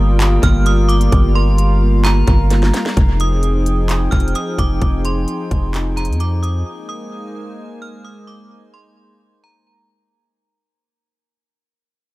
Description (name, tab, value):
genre	hip hop, atmospheric cloud-rap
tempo	130 BPM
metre	4/4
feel	half-time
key	F minor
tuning	A4 = 440 Hz
part	metallic FM bell	melody	0.0-10.3 s	Bb5 to F6	-26 LUFS	right 2 dB	chorus, tape echo
part	warm analog pad	sustained chords	0.0-10.3 s	F3 to G5	-23 LUFS	equal	chorus, sidechain pumping
part	soft electric-piano-like synth keys	arpeggios	0.0-3.0 s	Bb3 to Bb4	-27 LUFS	right 3 dB	none
part	long sustained 808-style bass	bass	0.0-6.6 s	F1 to F2	-15 LUFS	equal	none
part	drifting glass-harmonics texture	texture	0.0-10.3 s	Bb3 to Ab5	-33 LUFS	right 3 dB	chorus, built-in reverb
part	trap drum kit	drums	0.2-6.5 s	handclaps, hi-hat, kick drum, snare drum	-18 LUFS	equal	tape echo
room	little or no reverb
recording	echo-heavy mix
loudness	-13 LUFS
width	side -19 dB against mid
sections	0.0-3.0 A section; 3.0-10.4 B section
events	drum fill 2.5-3.0; fade-out 3.0-10.4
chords	0.0 Gm7; 3.0 Fm9; 6.7 Bb9sus4